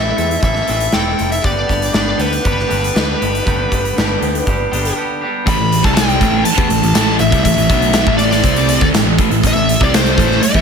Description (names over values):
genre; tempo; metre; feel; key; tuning
quiet-loud alternative rock; 120 BPM; 4/4; straight; A minor; A4 = 439 Hz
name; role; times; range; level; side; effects
smooth overdriven lead guitar; melody; 0.0-10.6 s; B4 to B5; -19 LUFS; left 2 dB; plate reverb, tape echo
twangy electric guitar; arpeggios; 0.0-5.5 s; G2 to A4; -21 LUFS; right 1 dB; spring reverb, plate reverb
picked electric bass; bass; 0.0-10.6 s; E1 to E2; -20 LUFS; equal; none
big rock drum kit; drums; 0.2-10.6 s; hi-hat, kick drum, snare drum; -17 LUFS; equal; none
phased string machine; sustained chords; 5.9-10.6 s; A3 to E5; -25 LUFS; right 1 dB; none
fuzz guitar; riff; 5.5-10.6 s; A2 to C4; -19 LUFS; left 14 dB; distortion
thick fuzz guitar; riff; 5.5-10.6 s; A2 to C4; -17 LUFS; right 14 dB; distortion
room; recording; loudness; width
light reverb; none; -12 LUFS; side -6 dB against mid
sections
0.0-5.5 A section; 5.5-10.6 B section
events
break 5.0-5.5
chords
0.0 Am; 1.4 G; 5.5 Am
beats
0.42 0.93 | 1.44 1.94 2.45 2.95 | 3.46 3.96 4.46 4.96 | 5.46 5.96 6.46 6.96 | 7.45 7.95 8.44 8.94 | 9.43 9.92 10.42